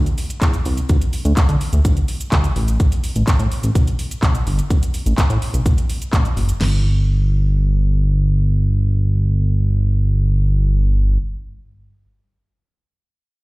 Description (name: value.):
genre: dance-pop.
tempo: 126 BPM.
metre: 4/4.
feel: straight.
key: unclear.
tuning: A4 = 440 Hz.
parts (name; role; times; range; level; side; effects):
chorused synth bass; bass; 0.0-11.2 s; F#1 to D3; -16 LUFS; equal; sidechain pumping.
pop drum kit; drums; 0.1-6.7 s; crash cymbal, handclaps, hi-hat, kick drum, shaker, snare drum; -17 LUFS; equal; none.
room: little or no reverb.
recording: played on a big sound system in a bare room, large studio reverb.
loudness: -15 LUFS.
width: side -22 dB against mid.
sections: 0.0-6.6 A section; 6.6-10.4 B section.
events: none.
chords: none.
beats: 0.42 | 0.89 1.37 1.85 2.32 | 2.80 3.27 3.75 4.23 | 4.70 5.18 5.66 6.13 | 6.61 7.08 7.56 8.04 | 8.51 8.99 9.47 9.94.